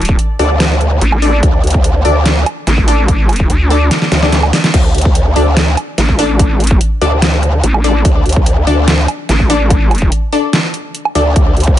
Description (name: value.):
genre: heavy wobble dubstep.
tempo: 145 BPM.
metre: 4/4.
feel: half-time.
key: unclear.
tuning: A4 = 438 Hz.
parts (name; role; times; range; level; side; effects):
vowel-sweep wobble bass; bass; 0.0-10.1 s; A1 to D2; -12 LUFS; equal; chorus, overdrive.
dubstep drum kit; drums; 0.0-11.8 s; crash cymbal, hi-hat, snare drum, woodblock; -16 LUFS; right 1 dB; overdrive.
electronic kick drum; drums; 0.1-11.8 s; none; -12 LUFS; equal; overdrive.
orchestra-hit-like synth stab; stabs; 0.4-11.3 s; D4 to D5; -18 LUFS; left 3 dB; built-in reverb, cassette tape, digital delay.
growl bass; bass; 0.4-11.8 s; D2; -12 LUFS; equal; chorus, overdrive.
room: digital ambience.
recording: nothing above 11.0 kHz.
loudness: -9 LUFS.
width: side -12 dB against mid.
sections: 0.0-11.8 A section.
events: kick drops out 3.9-4.7; drum fill 3.9-4.7.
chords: 0.0 D5.